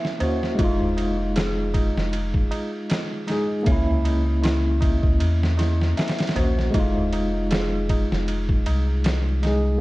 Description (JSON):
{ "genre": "trip hop", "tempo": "78 BPM", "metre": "4/4", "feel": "swing 55% on 16ths", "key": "F phrygian", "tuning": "A4 = 441 Hz", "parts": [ { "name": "tine electric piano", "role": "accompaniment", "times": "0.0-9.8 s", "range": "Ab3 to Ab4", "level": "-26 LUFS", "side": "equal", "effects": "tremolo, tape echo" }, { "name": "dark detuned synth bell", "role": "arpeggios", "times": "0.0-9.8 s", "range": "Fb4 to Fb5", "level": "-32 LUFS", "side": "equal", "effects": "chorus, vintage 12-bit sampler grit, ping-pong delay" }, { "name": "trip hop sampler-style drum kit", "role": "drums", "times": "0.0-9.6 s", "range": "kick drum, ride cymbal, snare drum", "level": "-25 LUFS", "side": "equal", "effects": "none" }, { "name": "tabla", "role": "percussion", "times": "0.2-9.8 s", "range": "none", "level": "-33 LUFS", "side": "right 1 dB", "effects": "none" }, { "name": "soft dub sub bass", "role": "bass", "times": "0.6-9.8 s", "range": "F1 to Fb2", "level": "-23 LUFS", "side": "equal", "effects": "none" } ], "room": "little or no reverb", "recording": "dark, warm production, vinyl crackle, nothing above 10.8 kHz", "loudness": "-20 LUFS", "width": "side -19 dB against mid", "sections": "0.0-9.8 A section", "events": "none", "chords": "0.0 Dbm6; 0.6 Fm7; 3.7 Dbm6; 6.7 Fm7", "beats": "| 0.59 1.36 2.13 2.90 | 3.67 4.44 5.21 5.97 | 6.74 7.51 8.28 9.05" }